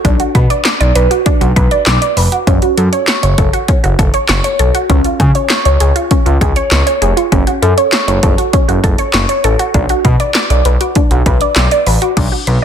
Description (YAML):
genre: synth-pop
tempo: 99 BPM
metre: 4/4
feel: straight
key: F# harmonic minor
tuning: A4 = 440 Hz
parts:
  - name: resonant blip pluck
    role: arpeggios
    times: 0.0-12.6 s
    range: C#4 to D6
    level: -14 LUFS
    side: right 1 dB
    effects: phaser, tape echo
  - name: smooth synth bass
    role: bass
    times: 0.0-12.6 s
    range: E#1 to C#3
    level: -13 LUFS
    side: equal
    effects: none
  - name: punchy analog drum machine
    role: drums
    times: 0.0-12.6 s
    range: crash cymbal, handclaps, hi-hat, kick drum, snare drum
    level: -14 LUFS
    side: equal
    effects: none
room: light reverb, digital ambience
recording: dense, heavily limited modern master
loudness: -9 LUFS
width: side -8 dB against mid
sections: 0.0-12.2 A section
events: none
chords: 0.0 Bm; 2.5 F#m; 4.9 C#; 7.3 F#m; 9.7 Bm